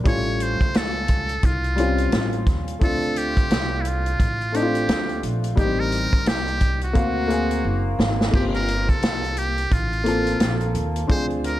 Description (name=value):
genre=hip hop, jazz-hop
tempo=87 BPM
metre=4/4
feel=swing 61% on 16ths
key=G minor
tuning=A4 = 439 Hz
part: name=warm upright piano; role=accompaniment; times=0.0-11.6 s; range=G3 to E#5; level=-25 LUFS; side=left 2 dB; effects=none
part: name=upright bass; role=bass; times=0.0-11.6 s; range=F#1 to Eb2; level=-26 LUFS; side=equal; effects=none
part: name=trumpet with metal mute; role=melody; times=0.1-11.6 s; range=E4 to C#5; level=-27 LUFS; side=right 1 dB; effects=none
part: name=vintage drum kit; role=drums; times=0.1-11.6 s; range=crash cymbal, hi-hat, kick drum, snare drum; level=-23 LUFS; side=equal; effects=none
room=light reverb, studio ambience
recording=dark, warm production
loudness=-19 LUFS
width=side -14 dB against mid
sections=0.0-8.3 A section; 8.3-11.6 A section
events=drum fill 7.6-8.3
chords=0.1 A7alt; 2.8 Dm7; 5.6 Am7b5; 7.0 D7alt; 8.3 Gm11; 11.1 Dm7b5